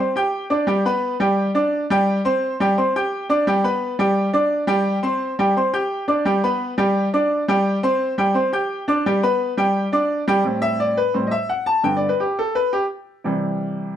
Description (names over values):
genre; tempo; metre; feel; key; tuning
latin; 172 BPM; 4/4; straight; G major; A4 = 440 Hz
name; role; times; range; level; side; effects
bright baby grand piano; solo; 0.0-14.0 s; G2 to G6; -18 LUFS; equal; none
room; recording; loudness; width
moderate studio reverb, RT60 0.7 s; none; -18 LUFS; side -10 dB against mid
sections
0.0-10.4 A section; 10.4-14.0 B section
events
grand piano solo 10.4-14.0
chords
0.0 Gsus4; 0.7 G; 2.1 C5; 3.5 G; 4.9 Gsus4; 6.3 G; 7.7 C5; 9.1 G; 10.4 Am7; 11.8 G; 13.2 C